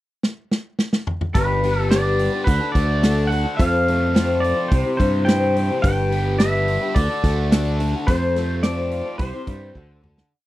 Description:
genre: folk rock and heartland rock.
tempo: 107 BPM.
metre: 4/4.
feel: straight.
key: G mixolydian.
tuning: A4 = 438 Hz.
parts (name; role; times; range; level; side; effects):
natural country drum kit; drums; 0.2-10.3 s; hi-hat, kick drum, snare drum, toms; -19 LUFS; right 1 dB; none.
pedal steel guitar; melody; 1.3-10.0 s; B4 to G5; -25 LUFS; equal; none.
picked old ladder-braced acoustic guitar; accompaniment; 1.3-10.3 s; C3 to C5; -24 LUFS; left 3 dB; none.
cranked stack guitar; riff; 1.3-10.3 s; F2 to G4; -28 LUFS; right 1 dB; overdrive, phaser.
picked electric bass; bass; 1.3-10.2 s; G1 to G2; -22 LUFS; equal; none.
room: little or no reverb.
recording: dry, close 1970s-style studio recording.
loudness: -17 LUFS.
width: side -16 dB against mid.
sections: 0.0-1.4 pickup bar; 1.4-10.3 verse.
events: drum fill 0.2-1.4, 9.8-10.3; fade-out 8.1-10.3.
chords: 0.0 N.C.; 1.4 G; 2.5 D; 3.6 F; 4.7 C; 5.8 G; 7.0 D; 8.1 F; 9.2 C; 9.8 D.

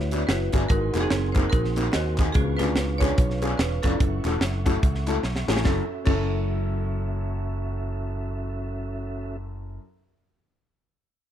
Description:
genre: uptempo gospel.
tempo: 145 BPM.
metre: 4/4.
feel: swing 60% on 8ths.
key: F# minor.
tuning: A4 = 440 Hz.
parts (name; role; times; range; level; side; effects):
marimba with hard mallets; melody; 0.0-9.8 s; B3 to D#5; -30 LUFS; right 2 dB; none.
percussive tonewheel organ; sustained chords; 0.0-9.4 s; C#4 to C#6; -36 LUFS; right 4 dB; fast rotary speaker.
fingered electric bass; bass; 0.0-9.8 s; E1 to D#2; -27 LUFS; equal; none.
tight funk drum kit; drums; 0.0-6.2 s; crash cymbal, hi-hat, kick drum, snare drum; -24 LUFS; equal; none.
warm upright piano; accompaniment; 0.1-9.8 s; F#2 to B4; -31 LUFS; left 4 dB; none.
group handclap; percussion; 0.1-6.2 s; none; -36 LUFS; left 1 dB; none.
room: little or no reverb.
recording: dark, warm production.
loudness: -22 LUFS.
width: side -10 dB against mid.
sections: 0.0-5.7 A section; 5.7-9.0 B section.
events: drum fill 5.2-5.7.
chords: 0.0 D69; 0.7 G#9; 2.4 C#7b9; 4.0 F#m7.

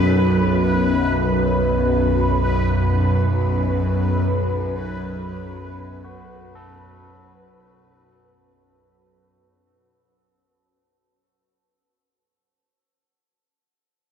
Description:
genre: dark ambient drone.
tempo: free time.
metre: none.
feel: none.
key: unclear.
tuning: A4 = 439 Hz.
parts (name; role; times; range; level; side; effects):
bowed-like drone; drone; 0.0-8.7 s; B1 to F#2; -19 LUFS; equal; built-in reverb, phaser.
bubbling stepped-filter texture; texture; 0.0-8.6 s; B4; -25 LUFS; right 1 dB; chorus, built-in reverb.
tubular bells; arpeggios; 6.0-12.8 s; F#4 to A4; -50 LUFS; left 2 dB; none.
room: wet huge ambient reverb, RT60 7.9 s.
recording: worn, warbling old tape, cassette tape, warbly pitch drift.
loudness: -17 LUFS.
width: side -7 dB against mid.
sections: 0.0-8.6 A section.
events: fade-out 0.0-8.6.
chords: 0.0 B5.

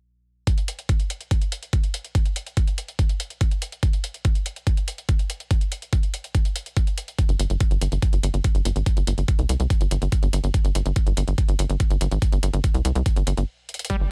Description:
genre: psychedelic trance.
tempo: 143 BPM.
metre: 4/4.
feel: straight.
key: unclear.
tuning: A4 = 440 Hz.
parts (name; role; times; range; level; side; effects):
electronic hi-hat; drums; 0.5-14.0 s; none; -36 LUFS; equal; none.
electronic kick drum; drums; 0.5-14.0 s; none; -23 LUFS; equal; overdrive.
tight sequencer bass; bass; 7.3-14.1 s; G1 to C2; -24 LUFS; equal; none.
overtone-sweeping drone; sustained chords; 14.1 s; G3; -47 LUFS; equal; none.
overdriven acid bass; riff; 13.9-14.0 s; G3; -31 LUFS; equal; distortion, sidechain pumping, diffuse ambient delay.
room: little or no reverb.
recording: faint mains hum.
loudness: -23 LUFS.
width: mono.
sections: 0.5-13.9 A section.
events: stop 13.5-13.9; drum fill 13.7.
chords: none.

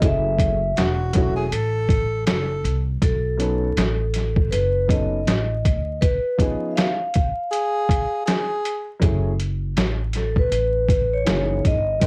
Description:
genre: hip hop, jazz-hop.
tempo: 80 BPM.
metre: 4/4.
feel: swing 58% on 16ths.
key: F# dorian.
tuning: A4 = 441 Hz.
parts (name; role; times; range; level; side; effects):
vibraphone with medium mallets; melody; 0.0-12.1 s; A4 to E#5; -26 LUFS; equal; cassette tape.
dark grand piano; accompaniment; 0.0-12.1 s; E3 to A4; -28 LUFS; equal; cassette tape.
upright bass; bass; 0.0-12.1 s; E1 to D2; -26 LUFS; equal; none.
trip hop sampler-style drum kit; drums; 0.0-12.1 s; hi-hat, kick drum, snare drum; -23 LUFS; equal; overdrive.
breathy tenor saxophone; second line; 0.8-2.8, 7.5-9.0 s; F#4 to A4; -27 LUFS; equal; cassette tape.
room: little or no reverb.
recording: home recording on cassette, vinyl crackle.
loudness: -21 LUFS.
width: mono.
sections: 0.0-9.0 A section; 9.0-12.1 B section.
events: vibraphone solo 9.0-12.1.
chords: 0.0 F#m9; 3.0 B9; 6.0 C#9; 9.0 F#m9; 11.3 F#13.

